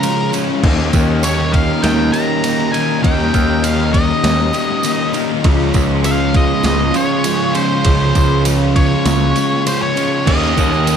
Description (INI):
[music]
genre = rock, shoegaze and dream pop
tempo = 100 BPM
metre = 4/4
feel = straight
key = Db lydian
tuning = A4 = 440 Hz
[part]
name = octave-fuzz lead guitar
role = melody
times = 0.0-11.0 s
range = Bb4 to Bb5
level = -20 LUFS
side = equal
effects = distortion, slapback echo
[part]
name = dark analog pad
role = sustained chords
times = 0.0-11.0 s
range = G3 to C6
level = -25 LUFS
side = right 1 dB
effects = chorus, phaser
[part]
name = crunchy overdriven guitar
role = riff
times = 0.0-11.0 s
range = Db3 to G4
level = -21 LUFS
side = left 11 dB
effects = wide subtle chorus
[part]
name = crunchy overdriven guitar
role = riff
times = 0.0-11.0 s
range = Db3 to G4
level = -22 LUFS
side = right 12 dB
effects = reverse reverb
[part]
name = overdriven electric guitar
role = riff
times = 0.0-11.0 s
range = Db3 to Eb4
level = -21 LUFS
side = left 1 dB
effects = none
[part]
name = gated 80s digital drum machine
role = drums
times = 0.0-11.0 s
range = crash cymbal, kick drum, ride cymbal, snare drum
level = -19 LUFS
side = equal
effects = gated reverb, gated reverb snare
[part]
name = tambourine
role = percussion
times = 0.0-11.0 s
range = none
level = -31 LUFS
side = right 11 dB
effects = none
[part]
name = overdriven picked electric bass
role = bass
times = 0.6-11.0 s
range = Db2 to Eb2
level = -17 LUFS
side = equal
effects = none
[sound]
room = digital ambience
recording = none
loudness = -12 LUFS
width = side -8 dB against mid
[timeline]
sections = 0.0-10.3 A section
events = break 9.7-10.3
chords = 0.0 Dbmaj7; 0.6 Eb7; 5.4 Dbmaj7; 10.3 Eb7